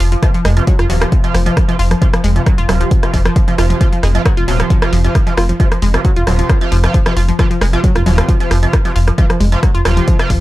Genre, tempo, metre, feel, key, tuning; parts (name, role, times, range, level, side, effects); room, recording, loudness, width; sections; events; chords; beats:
driving peak-time techno; 134 BPM; 4/4; straight; A4 = 435 Hz
analog pluck; riff; 0.0-10.4 s; F3 to F4; -20 LUFS; equal; chorus, tube saturation, sidechain pumping, tape echo
dark detuned saw bass; bass; 0.0-10.4 s; Eb1 to F1; -14 LUFS; equal; sidechain pumping
swarming drone; drone; 0.0-10.4 s; F3; -27 LUFS; equal
punchy analog drum machine; drums; 0.0-10.4 s; hi-hat, rim click; -21 LUFS; equal
sync-sweep polysynth; stabs; 0.2-10.3 s; C3 to F4; -21 LUFS; right 2 dB; chorus, phaser, sidechain pumping, tape echo
electronic kick drum; drums; 0.2-10.4 s; -13 LUFS; equal
digital ambience; dry, gritty hardware recording; -11 LUFS; side -16 dB against mid
0.0-10.4 A section
0.0 F5
| 0.23 0.67 1.12 1.57 | 2.02 2.46 2.91 3.36 | 3.81 4.25 4.70 5.15 | 5.60 6.05 6.49 6.94 | 7.39 7.84 8.29 8.73 | 9.18 9.63 10.08